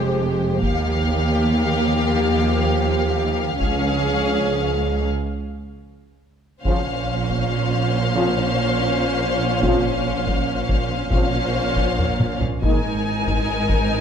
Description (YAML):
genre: cinematic, epic orchestral film score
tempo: free time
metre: none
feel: none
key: Bb dorian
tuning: A4 = 444 Hz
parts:
  - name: warm symphonic violin section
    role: melody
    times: 0.0-14.0 s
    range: C5 to Ab5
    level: -26 LUFS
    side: left 4 dB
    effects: none
  - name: warm symphonic violin section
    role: second line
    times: 0.0-14.0 s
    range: G4 to C5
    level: -29 LUFS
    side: left 3 dB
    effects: none
  - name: warm symphonic viola section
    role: accompaniment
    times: 0.0-14.0 s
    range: Ab3 to Eb4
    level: -26 LUFS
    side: equal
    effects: none
  - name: mellow French horn section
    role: sustained chords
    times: 0.0-12.8 s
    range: F3 to Ab4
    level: -26 LUFS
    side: equal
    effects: none
  - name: warm symphonic cello section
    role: bass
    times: 0.0-14.0 s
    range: Db2 to Bb2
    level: -26 LUFS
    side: right 2 dB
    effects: none
  - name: warm symphonic double bass section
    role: bass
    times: 0.0-14.0 s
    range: F1 to Eb2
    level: -25 LUFS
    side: right 4 dB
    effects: none
  - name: taiko ensemble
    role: drums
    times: 0.6-4.4, 6.7-14.0 s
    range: none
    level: -24 LUFS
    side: left 1 dB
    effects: none
  - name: clear trombone section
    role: sustained chords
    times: 6.6-12.8 s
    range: Db3 to Ab3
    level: -29 LUFS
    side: right 5 dB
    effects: none
room: light reverb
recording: none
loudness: -18 LUFS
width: side -8 dB against mid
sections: 0.0-6.6 A section; 6.6-14.0 B section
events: build-up 0.0-6.6; break 5.1-6.6; drum fill 12.0-12.6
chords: 0.0 Fmadd9; 0.6 Ebadd9; 3.6 Db; 6.6 Bbmadd9; 12.6 Absus2